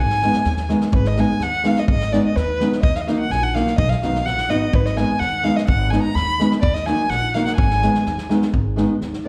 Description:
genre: balkan folk, Balkan wedding band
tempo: 126 BPM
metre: 2/4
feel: straight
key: Ab minor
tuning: A4 = 441 Hz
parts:
  - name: dark violin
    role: melody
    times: 0.0-9.3 s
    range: Cb5 to Cb6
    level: -24 LUFS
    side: equal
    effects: none
  - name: upright bass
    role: bass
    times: 0.0-9.3 s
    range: Ab1 to Eb2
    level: -26 LUFS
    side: equal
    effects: none
  - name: natural country drum kit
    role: percussion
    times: 0.1-9.2 s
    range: kick drum, snare drum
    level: -26 LUFS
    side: equal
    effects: none
  - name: nylon-string guitar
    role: accompaniment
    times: 0.2-9.3 s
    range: Eb3 to Eb4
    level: -23 LUFS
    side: equal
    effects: none
room: moderate scoring stage reverb, RT60 1.4 s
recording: heard from further back in the room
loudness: -19 LUFS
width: mono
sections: 0.9-8.5 A section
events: none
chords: 0.0 Abm; 2.8 Ebm; 3.8 B; 4.7 Abm; 6.6 Ebm; 7.6 Abm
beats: 0.46 | 0.93 1.41 | 1.88 2.36 | 2.83 3.31 | 3.79 4.26 | 4.74 5.21 | 5.69 6.16 | 6.64 7.11 | 7.59 8.06 | 8.54 9.02

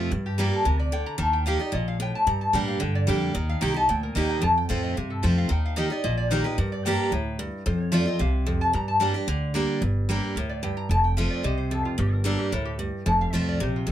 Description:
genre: bluegrass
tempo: 222 BPM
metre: 4/4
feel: straight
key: G minor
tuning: A4 = 438 Hz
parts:
  - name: picked steel-string acoustic guitar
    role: accompaniment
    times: 0.0-13.9 s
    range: F2 to G4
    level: -26 LUFS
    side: right 1 dB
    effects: none
  - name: upright bass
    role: bass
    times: 0.0-13.9 s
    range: F1 to A2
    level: -26 LUFS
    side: equal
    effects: none
  - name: lap resonator guitar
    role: melody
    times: 0.3-13.9 s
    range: F4 to Bb5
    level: -28 LUFS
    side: left 1 dB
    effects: none
room: light reverb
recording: close, detailed microphones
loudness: -22 LUFS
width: side -11 dB against mid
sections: 0.0-1.2 A section; 1.2-9.8 A section; 9.8-13.9 B section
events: resonator guitar played with a steel bar solo 0.0-9.8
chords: 0.1 Gm; 1.2 Eb; 2.3 Gm; 3.4 Eb; 4.4 F; 5.5 Eb; 6.6 Gm; 7.7 F; 8.7 Gm; 10.9 F; 12.0 Gm; 13.1 F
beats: | 0.12 0.39 0.66 0.93 | 1.20 1.47 1.73 2.00 | 2.27 2.54 2.81 3.08 | 3.35 3.62 3.89 4.16 | 4.43 4.70 4.97 5.24 | 5.50 5.78 6.04 6.31 | 6.58 6.85 7.12 7.39 | 7.66 7.93 8.20 8.47 | 8.74 9.01 9.28 9.55 | 9.82 10.09 10.36 10.63 | 10.90 11.17 11.44 11.71 | 11.98 12.25 12.52 12.79 | 13.06 13.33 13.60 13.87

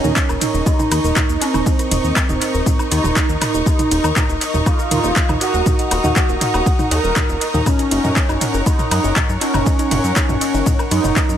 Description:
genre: melodic techno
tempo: 120 BPM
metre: 4/4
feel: straight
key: Eb dorian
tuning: A4 = 440 Hz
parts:
  - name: expressive synth lead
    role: melody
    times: 0.0-11.4 s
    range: C4 to Bb4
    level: -23 LUFS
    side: right 1 dB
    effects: ensemble chorus, sidechain pumping, analog delay
  - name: dark detuned synth bell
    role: second line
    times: 0.0-11.4 s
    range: C4 to Bb4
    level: -26 LUFS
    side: right 1 dB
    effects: chorus, phaser, sidechain pumping, analog delay
  - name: dark analog pad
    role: sustained chords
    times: 0.0-11.4 s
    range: Bb4 to Eb6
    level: -27 LUFS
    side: equal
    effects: chorus, sidechain pumping
  - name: soft round pluck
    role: arpeggios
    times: 0.0-11.4 s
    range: Eb4 to Eb6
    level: -25 LUFS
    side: right 2 dB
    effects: chorus, sidechain pumping, analog delay
  - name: fat analog bass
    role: bass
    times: 0.0-11.4 s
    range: Eb1 to Gb2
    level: -21 LUFS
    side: equal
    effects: sidechain pumping
  - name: deep house drum kit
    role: drums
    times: 0.0-11.4 s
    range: handclaps, hi-hat, ride cymbal, shaker, toms, woodblock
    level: -21 LUFS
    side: equal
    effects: overdrive, studio reverb, analog delay
  - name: rich studio string section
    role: texture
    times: 0.0-11.4 s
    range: Eb4 to Db6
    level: -28 LUFS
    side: left 1 dB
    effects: sidechain pumping
  - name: electronic kick drum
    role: drums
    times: 0.2-11.3 s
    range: none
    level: -18 LUFS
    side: equal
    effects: overdrive, studio reverb
room: light reverb, digital ambience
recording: echo-heavy mix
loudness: -14 LUFS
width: side -10 dB against mid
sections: 0.0-11.4 A section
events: none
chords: 0.0 Ebm7; 7.7 Gb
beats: 0.16 0.66 1.16 | 1.66 2.16 2.66 3.16 | 3.66 4.16 4.66 5.16 | 5.66 6.16 6.66 7.16 | 7.66 8.16 8.66 9.16 | 9.66 10.16 10.66 11.16

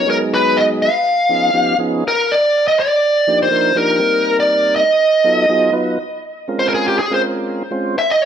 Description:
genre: jazz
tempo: 122 BPM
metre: 4/4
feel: straight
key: Bb dorian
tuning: A4 = 442 Hz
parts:
  - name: smooth overdriven lead guitar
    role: melody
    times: 0.0-8.3 s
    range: G4 to F5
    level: -14 LUFS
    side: equal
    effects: analog delay
  - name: tonewheel organ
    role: accompaniment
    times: 0.0-8.0 s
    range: F3 to C5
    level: -20 LUFS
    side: right 2 dB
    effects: slow rotary speaker
room: moderate large studio reverb, RT60 1.2 s, digital ambience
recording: none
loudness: -13 LUFS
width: side -8 dB against mid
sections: 0.0-6.0 A section; 6.0-8.3 B section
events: lead electric guitar solo 6.0-8.3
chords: 0.1 Abm7; 1.1 Db9; 2.0 Ebmaj9; 4.0 Cm7; 5.0 B7#11; 6.0 Bbm9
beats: | 0.07 0.56 1.05 1.55 | 2.04 2.54 3.03 3.52 | 4.02 4.51 5.01 5.50 | 5.99 6.49 6.98 7.47 | 7.97

